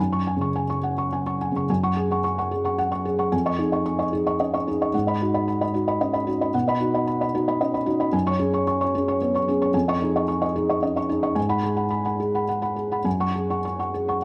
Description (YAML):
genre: neoclassical minimalist piano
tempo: 111 BPM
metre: 3/4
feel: uneven beats, rubato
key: unclear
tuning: A4 = 440 Hz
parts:
  - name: felt-muted upright piano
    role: solo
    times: 0.0-14.2 s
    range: E#2 to C#6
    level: -24 LUFS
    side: equal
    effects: none
room: moderate concert hall reverb, RT60 2.4 s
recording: dark, warm production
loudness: -24 LUFS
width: mono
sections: 0.0-1.7 A section; 1.7-14.2 B section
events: none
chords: 0.0 F#sus2; 3.3 C#add9/E#; 4.9 G#m7; 6.5 B; 8.1 F#sus2; 9.7 C#add9/E#; 11.4 G#m7; 13.1 F#sus2